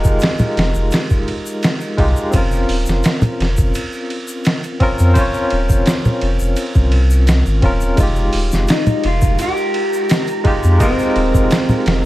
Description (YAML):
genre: trip hop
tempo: 85 BPM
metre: 4/4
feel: straight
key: F minor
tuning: A4 = 436 Hz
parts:
  - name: barky tine electric piano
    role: accompaniment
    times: 0.0-12.1 s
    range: Ab3 to Db5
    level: -20 LUFS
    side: equal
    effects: tremolo, tape echo
  - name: warm sub bass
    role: bass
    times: 0.0-12.0 s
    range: Eb1 to F2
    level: -16 LUFS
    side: equal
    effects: none
  - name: trip hop sampler-style drum kit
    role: drums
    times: 0.0-12.0 s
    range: hi-hat, kick drum, ride cymbal, snare drum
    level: -18 LUFS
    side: equal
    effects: none
  - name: tube shaker and congas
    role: percussion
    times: 0.0-11.8 s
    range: none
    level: -21 LUFS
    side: equal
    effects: none
  - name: wind-like tuned noise texture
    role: texture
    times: 8.9-12.1 s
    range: Bb4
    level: -31 LUFS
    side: right 5 dB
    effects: built-in reverb
  - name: electric guitar at the edge of break-up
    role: melody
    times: 8.7-12.1 s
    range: C4 to G4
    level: -18 LUFS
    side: equal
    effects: tape echo
room: little or no reverb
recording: vinyl crackle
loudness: -13 LUFS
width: side -16 dB against mid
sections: 0.0-12.1 A section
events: none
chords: 0.0 Fm9; 2.3 Bbmadd9; 8.0 Fm9